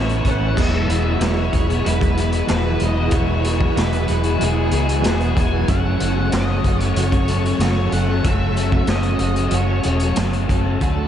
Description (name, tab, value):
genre	rock, shoegaze and dream pop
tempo	94 BPM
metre	4/4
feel	straight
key	unclear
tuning	A4 = 439 Hz
part	octave-fuzz lead guitar	melody	0.0-11.1 s	G#4 to G#5	-29 LUFS	left 2 dB	distortion, ping-pong delay
part	string machine, full ensemble	sustained chords	0.0-10.8 s	E4 to C#6	-29 LUFS	equal	ensemble chorus
part	direct-recorded clean electric guitar	riff	0.0-11.1 s	E2 to F#4	-24 LUFS	right 6 dB	reverse reverb
part	overdriven semi-hollow guitar	riff	0.0-11.1 s	F#2 to F#4	-25 LUFS	left 6 dB	ensemble chorus
part	vintage muted fingered electric bass	bass	0.0-11.1 s	E1 to D2	-20 LUFS	equal	none
part	raw garage drum kit	drums	0.1-11.0 s	crash cymbal, hi-hat, kick drum, snare drum	-23 LUFS	equal	none
part	picked twelve-string acoustic guitar	arpeggios	0.6-11.1 s	F#3 to G#4	-32 LUFS	left 7 dB	none
room	wet cathedral reverb, RT60 5.6 s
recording	dreamy mix soaked in reverb, nothing above 10.8 kHz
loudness	-16 LUFS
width	side -10 dB against mid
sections	0.0-10.8 A section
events	none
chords	0.0 Aadd9; 0.6 Eadd9; 5.7 F#m